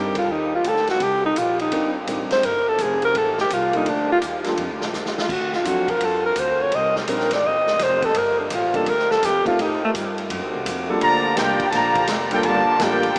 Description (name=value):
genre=jazz, big band swing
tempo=168 BPM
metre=4/4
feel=swing 65% on 8ths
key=G minor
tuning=A4 = 443 Hz
part: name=breathy alto saxophone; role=melody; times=0.0-9.9 s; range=A3 to Eb5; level=-23 LUFS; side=equal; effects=none
part: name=warm concert grand piano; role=accompaniment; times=0.0-13.0 s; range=F#3 to Bb4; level=-32 LUFS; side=equal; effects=none
part: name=warm saxophone section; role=sustained chords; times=0.0-13.2 s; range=C3 to G4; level=-33 LUFS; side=equal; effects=none
part: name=upright bass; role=bass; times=0.0-13.2 s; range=F1 to A2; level=-36 LUFS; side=equal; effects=none
part: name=swinging big-band drum kit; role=drums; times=0.1-13.2 s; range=crash cymbal, hi-hat, kick drum, ride cymbal, snare drum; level=-31 LUFS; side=equal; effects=none
part: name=clear trumpet section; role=melody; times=11.0-13.2 s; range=F4 to Bb5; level=-21 LUFS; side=equal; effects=none
part: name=clear trombone section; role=second line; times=11.0-13.2 s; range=D3 to G4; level=-25 LUFS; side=equal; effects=none
room=wet huge ambient reverb, RT60 8.6 s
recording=in a vast, echoing space, small speaker sound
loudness=-21 LUFS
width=mono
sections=0.0-11.0 A section; 11.0-13.2 B section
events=alto saxophone solo 0.0-11.0; drum fill 4.9-5.3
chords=0.0 Cm7; 2.4 Gm9; 5.3 D7#9; 6.7 Cm7; 8.2 Gm9; 9.6 Am7b5; 10.3 D7alt; 11.0 Gm9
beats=0.28 0.64 | 1.00 1.36 1.72 2.07 | 2.43 2.79 3.15 3.50 | 3.86 4.22 4.58 4.93 | 5.29 5.65 6.01 6.36 | 6.72 7.08 7.44 7.79 | 8.15 8.51 8.87 9.22 | 9.58 9.94 10.29 10.65 | 11.01 11.37 11.72 12.08 | 12.44 12.79 13.15